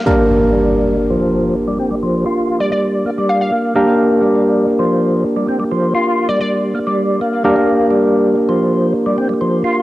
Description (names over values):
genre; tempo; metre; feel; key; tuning
breakbeat; 130 BPM; 4/4; straight; G minor; A4 = 440 Hz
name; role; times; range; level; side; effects
percussive tonewheel organ; riff; 0.0-9.8 s; F3 to F4; -18 LUFS; equal; overdrive, chorus vibrato, slow rotary speaker, low-pass filter, cassette tape, tape echo
barky tine electric piano; stabs; 0.1-9.8 s; Bb3 to Bb4; -15 LUFS; equal; low-pass filter, cassette tape, tape echo
impact; sound effects; 0.1-1.9 s; none; -21 LUFS; equal; none
glassy wavetable pluck; melody; 2.6-3.5, 6.3-6.5 s; D5 to F5; -21 LUFS; equal; chorus, AM radio sound, tape echo
room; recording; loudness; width
moderate spring reverb, RT60 1.5 s, digital ambience; home recording on cassette; -13 LUFS; side -16 dB against mid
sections
0.1-9.8 A section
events
impact 0.1-1.9; filter sweep on tonewheel organ 0.1-9.8; filter sweep on tine electric piano 0.1-9.8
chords
0.1 Gm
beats
| 0.06 0.52 0.98 1.45 | 1.91 2.37 2.83 3.29 | 3.75 4.21 4.68 5.14 | 5.60 6.06 6.52 6.98 | 7.45 7.91 8.37 8.83 | 9.29 9.75